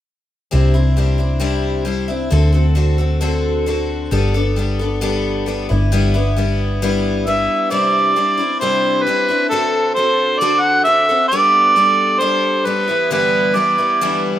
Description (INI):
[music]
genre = rock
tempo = 134 BPM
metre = 4/4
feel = straight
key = unclear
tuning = A4 = 441 Hz
[part]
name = picked twelve-string acoustic guitar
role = accompaniment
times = 0.5-14.4 s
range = G2 to A4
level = -19 LUFS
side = left 3 dB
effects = none
[part]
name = hollow-body short-scale fingered electric bass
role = bass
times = 0.5-7.5 s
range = G1 to D2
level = -17 LUFS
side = equal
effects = none
[part]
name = mellow harmonica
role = melody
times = 7.3-14.2 s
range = A4 to F#5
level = -14 LUFS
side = right 2 dB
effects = tape echo
[sound]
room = small room ambience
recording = rough home demo mix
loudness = -14 LUFS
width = side -12 dB against mid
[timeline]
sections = 0.5-7.7 A section; 7.7-14.4 B section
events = none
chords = 0.5 Cadd9; 2.3 D7; 4.1 Gadd9; 5.7 Em7/G; 7.7 Cadd9; 9.5 D7; 11.3 Gadd9; 12.9 Em7/G